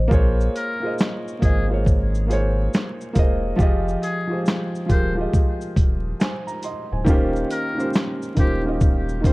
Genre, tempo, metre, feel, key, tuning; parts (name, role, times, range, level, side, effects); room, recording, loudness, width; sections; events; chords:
lo-fi hip hop; 69 BPM; 4/4; swing 64% on 16ths; A4 = 440 Hz
felt-muted upright piano; accompaniment; 0.0-9.3 s; Eb3 to C6; -24 LUFS; right 1 dB; cassette tape, low-pass filter
soft dub sub bass; bass; 0.0-9.3 s; D1 to Bb1; -23 LUFS; equal
dusty soul sampler-style drum kit; drums; 0.1-9.3 s; handclaps, hi-hat, kick drum, shaker, snare drum; -19 LUFS; equal
trumpet with metal mute; melody; 0.6-8.6 s; G4 to C5; -31 LUFS; left 2 dB; low-pass filter, tape echo
studio reverb; dark, warm production, vinyl crackle; -19 LUFS; side -22 dB against mid
0.0-9.3 A section
0.1 Bbm9; 3.6 Fm9; 7.1 Eb13